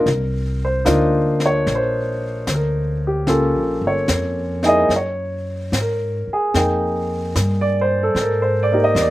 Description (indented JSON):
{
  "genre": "jazz ballad",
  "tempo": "74 BPM",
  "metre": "4/4",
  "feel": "swing 68% on 8ths",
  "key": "unclear",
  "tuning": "A4 = 438 Hz",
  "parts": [
    { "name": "dark concert grand piano", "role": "accompaniment", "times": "0.0-9.1 s", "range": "Bb3 to G5", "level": "-18 LUFS", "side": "equal", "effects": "none" },
    { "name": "upright bass", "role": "bass", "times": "0.0-9.1 s", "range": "G1 to Ab2", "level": "-22 LUFS", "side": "equal", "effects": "none" },
    { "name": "jazz brush drum kit", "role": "drums", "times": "0.1-9.1 s", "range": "brushed snare drum, hi-hat, snare drum", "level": "-24 LUFS", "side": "left 1 dB", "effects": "none" }
  ],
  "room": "little or no reverb",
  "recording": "recorded outdoors, with no room sound",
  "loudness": "-17 LUFS",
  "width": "side -16 dB against mid",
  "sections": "0.0-9.1 A section",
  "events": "none",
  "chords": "0.1 Cm11; 3.3 Gm7b5; 4.9 Gbsus2; 6.5 Fm11",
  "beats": "| 0.06 0.86 1.66 2.47 | 3.27 4.08 4.90 5.72 | 6.54 7.35 8.16 8.96"
}